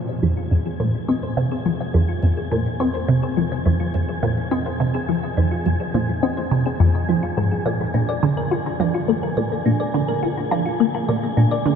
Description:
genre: ambient, sequencer-driven space music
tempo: 105 BPM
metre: 4/4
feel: straight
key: F dorian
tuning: A4 = 440 Hz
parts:
  - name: thumb-piano-like synth pluck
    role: arpeggios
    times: 0.0-11.6 s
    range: D4 to Eb5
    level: -30 LUFS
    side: moving between left 4 dB and right 3 dB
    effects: chorus, auto-pan, ping-pong delay
  - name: resonant blip pluck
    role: riff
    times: 0.0-11.8 s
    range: F2 to F4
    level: -19 LUFS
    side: equal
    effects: phaser, lush chorus, ping-pong delay
  - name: wind-like tuned noise texture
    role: texture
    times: 0.1-11.8 s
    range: Ab4 to Ab5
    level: -32 LUFS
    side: equal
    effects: built-in reverb, wide subtle chorus
room: wet huge ambient reverb, RT60 8.3 s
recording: dreamy mix soaked in reverb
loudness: -18 LUFS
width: side -7 dB against mid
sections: 0.0-11.8 A section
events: fade-in on synth arpeggio sound 0.0-11.8; fade-in on synth texture 0.0-11.8; filter sweep on synth arpeggio sound 0.0-11.8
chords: 0.0 Fm; 7.7 Bb

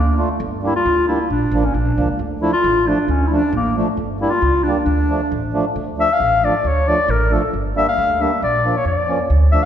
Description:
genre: klezmer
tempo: 135 BPM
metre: 2/4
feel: straight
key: D harmonic minor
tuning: A4 = 440 Hz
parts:
  - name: warm clarinet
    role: melody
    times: 0.0-9.7 s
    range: A3 to F5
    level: -18 LUFS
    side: left 2 dB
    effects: none
  - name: upright bass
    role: bass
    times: 0.0-9.6 s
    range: G1 to F2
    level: -20 LUFS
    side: right 1 dB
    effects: none
  - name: mellow accordion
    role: accompaniment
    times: 0.2-9.6 s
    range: F3 to F4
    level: -22 LUFS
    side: right 2 dB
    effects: none
room: wet scoring stage reverb, RT60 1.6 s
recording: recorded in a church or concert hall, nothing above 10.9 kHz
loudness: -15 LUFS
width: side -9 dB against mid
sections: 0.0-5.8 A section; 5.8-9.7 A section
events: none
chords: 0.4 Gm; 1.3 Bb; 2.2 Dm; 4.0 Gm; 4.9 Dm; 7.5 Gm; 8.4 Bb

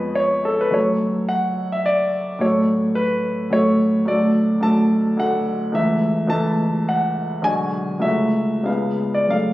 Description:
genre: classical, romantic character piece for solo piano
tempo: 87-112 BPM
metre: 3/4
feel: rubato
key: F# minor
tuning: A4 = 440 Hz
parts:
  - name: clear baby grand piano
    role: solo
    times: 0.0-9.5 s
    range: B1 to A5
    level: -17 LUFS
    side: equal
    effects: none
room: moderate concert hall reverb, RT60 1.8 s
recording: recorded on a phone in the room, club reverb, compression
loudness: -17 LUFS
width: side -16 dB against mid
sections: 0.0-9.5 A section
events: none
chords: 0.0 C#7/E#; 0.8 F#m; 2.4 F#m/A; 4.1 D; 5.8 A/C#; 7.5 G#m7b5/B; 8.0 F#m/C#; 8.7 C#7

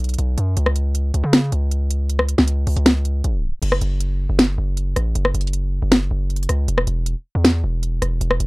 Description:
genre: hip hop, trap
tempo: 157 BPM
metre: 4/4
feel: half-time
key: unclear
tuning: A4 = 442 Hz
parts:
  - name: distorted 808-style bass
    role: bass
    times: 0.0-8.5 s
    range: E1 to C#3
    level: -19 LUFS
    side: equal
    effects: distortion
  - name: trap drum kit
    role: drums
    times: 0.0-8.5 s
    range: crash cymbal, hi-hat, rim click, snare drum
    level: -17 LUFS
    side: equal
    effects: none
room: little or no reverb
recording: dark, warm production, tape stop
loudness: -17 LUFS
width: side -24 dB against mid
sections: 0.0-3.6 A section; 3.6-8.5 B section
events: tape stop 3.2-3.6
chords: none

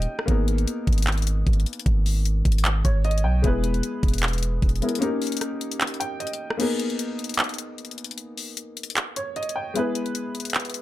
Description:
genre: hip hop, trap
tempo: 152 BPM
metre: 4/4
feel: half-time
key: G# harmonic minor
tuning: A4 = 439 Hz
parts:
  - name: dark grand piano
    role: accompaniment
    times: 0.0-10.8 s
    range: G#3 to G5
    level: -28 LUFS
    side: left 1 dB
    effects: low-pass filter
  - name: long sustained 808-style bass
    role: bass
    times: 0.0-4.8 s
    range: E1 to B1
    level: -22 LUFS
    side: equal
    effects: none
  - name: trap drum kit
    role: drums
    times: 0.0-10.8 s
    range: crash cymbal, handclaps, hi-hat, kick drum, rim click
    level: -25 LUFS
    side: equal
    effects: none
room: little or no reverb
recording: none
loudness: -22 LUFS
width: side -15 dB against mid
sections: 0.0-6.6 A section; 6.6-10.8 B section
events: grand piano fill 0.0; break 5.0-6.6, 6.6-10.8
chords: 0.3 G#madd9; 3.4 E; 5.0 D#7; 6.6 G#madd9; 9.8 E

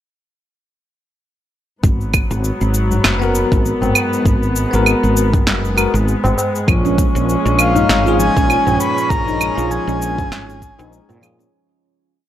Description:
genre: organic downtempo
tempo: 99 BPM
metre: 4/4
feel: swing 56% on 16ths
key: G# dorian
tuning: A4 = 441 Hz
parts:
  - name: dark studio string section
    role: sustained chords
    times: 1.8-11.5 s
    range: G#2 to C#4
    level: -22 LUFS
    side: left 1 dB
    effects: sidechain pumping
  - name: woody fretless electric bass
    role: bass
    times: 1.8-11.5 s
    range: F#1 to A#2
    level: -18 LUFS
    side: equal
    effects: transformer saturation, ensemble chorus, sidechain pumping
  - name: electronic cabasa, claves and snare drum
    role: drums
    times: 1.8-11.5 s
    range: none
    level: -19 LUFS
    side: right 2 dB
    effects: none
  - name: electronic kick drum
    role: drums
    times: 1.8-10.8 s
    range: none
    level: -17 LUFS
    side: equal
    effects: none
  - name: tabla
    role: percussion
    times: 1.8-11.4 s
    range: none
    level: -24 LUFS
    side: left 1 dB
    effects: none
  - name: bell-like tine electric piano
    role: accompaniment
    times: 3.2-11.5 s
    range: B3 to A#4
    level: -22 LUFS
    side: left 3 dB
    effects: medium stereo tremolo, sidechain pumping, tape echo
  - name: handpan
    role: arpeggios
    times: 6.7-11.5 s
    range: E#3 to E#4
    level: -20 LUFS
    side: right 2 dB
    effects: tape echo
  - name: breathy flute-like synth lead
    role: melody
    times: 7.6-11.2 s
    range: E#5 to B5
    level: -19 LUFS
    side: left 1 dB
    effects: chorus, tape echo
room: light reverb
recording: dry, gritty hardware recording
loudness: -13 LUFS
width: side -11 dB against mid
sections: 1.8-11.5 groove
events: fade-out 8.3-11.5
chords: 1.8 G#m7; 6.7 A#m7

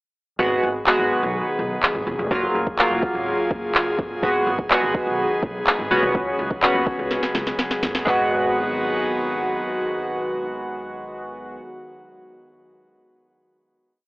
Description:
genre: dance-pop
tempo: 125 BPM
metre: 4/4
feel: straight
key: G# dorian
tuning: A4 = 440 Hz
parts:
  - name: chorused retro synth keys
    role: accompaniment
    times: 0.4-11.6 s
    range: F#3 to F#4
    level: -21 LUFS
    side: equal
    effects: none
  - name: airy breathy pad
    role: sustained chords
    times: 0.4-11.6 s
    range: C#3 to G#4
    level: -26 LUFS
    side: equal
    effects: chorus, sidechain pumping
  - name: upright bass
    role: bass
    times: 0.4-11.6 s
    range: E1 to D#2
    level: -31 LUFS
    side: equal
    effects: sidechain pumping
  - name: smooth R&B drum kit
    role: drums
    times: 0.9-8.2 s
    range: handclaps, kick drum, snare drum, toms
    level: -21 LUFS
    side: equal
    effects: none
room: light reverb, digital ambience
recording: dry, gritty hardware recording, telephone sound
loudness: -19 LUFS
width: side -21 dB against mid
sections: 0.4-8.1 verse; 8.1-11.9 final chord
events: drum fill 7.1-8.1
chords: 0.4 G#m7; 2.3 F#maj7; 4.2 G#m7; 5.9 C#7sus4; 8.1 G#m7

